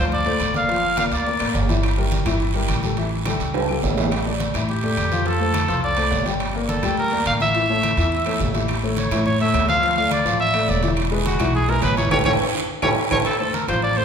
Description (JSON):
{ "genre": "latin, salsa", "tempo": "210 BPM", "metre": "4/4", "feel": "straight", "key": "unclear", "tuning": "A4 = 440 Hz", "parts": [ { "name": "clear trumpet", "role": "melody", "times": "0.0-1.5, 4.7-14.0 s", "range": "F#4 to F5", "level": "-22 LUFS", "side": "right 1 dB", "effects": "none" }, { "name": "warm grand piano", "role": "accompaniment", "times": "0.0-14.0 s", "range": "E3 to G5", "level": "-24 LUFS", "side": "left 3 dB", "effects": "none" }, { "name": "upright bass", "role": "bass", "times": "0.0-14.0 s", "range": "E1 to A2", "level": "-24 LUFS", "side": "equal", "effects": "none" }, { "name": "congas", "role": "percussion", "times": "0.1-14.0 s", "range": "none", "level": "-30 LUFS", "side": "left 2 dB", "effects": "none" }, { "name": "guiro", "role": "percussion", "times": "0.1-14.0 s", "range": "none", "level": "-33 LUFS", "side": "right 5 dB", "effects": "none" }, { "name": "timbales", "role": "percussion", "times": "0.3-14.0 s", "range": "none", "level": "-28 LUFS", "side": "right 5 dB", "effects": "none" }, { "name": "claves", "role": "percussion", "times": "0.4-13.8 s", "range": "none", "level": "-36 LUFS", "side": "left 5 dB", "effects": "none" } ], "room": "wet recital hall reverb, RT60 1.4 s", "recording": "recorded in a church or concert hall", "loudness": "-18 LUFS", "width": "side -7 dB against mid", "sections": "0.0-4.1 A section; 4.1-13.3 B section", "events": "drum fill 3.5-4.1, 12.4-13.3; band accent 12.1-13.3", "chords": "0.0 Dm7; 0.7 Gm7; 1.8 Edim/G; 3.0 A7; 4.1 Asus4; 5.3 F; 6.4 Gmadd9; 7.5 A; 9.8 Dm; 11.0 E; 12.1 A7(no3); 13.3 Bbmaj7sus2/A (rootless)", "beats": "0.11 0.40 | 0.69 0.97 1.26 1.54 | 1.83 2.12 2.40 2.69 | 2.97 3.26 3.54 3.83 | 4.12 4.40 4.69 4.97 | 5.26 5.55 5.83 6.12 | 6.40 6.69 6.97 7.26 | 7.55 7.83 8.12 8.40 | 8.69 8.97 9.26 9.54 | 9.83 10.12 10.40 10.69 | 10.97 11.26 11.54 11.83 | 12.11 12.40 12.68 12.97 | 13.25 13.54 13.82" }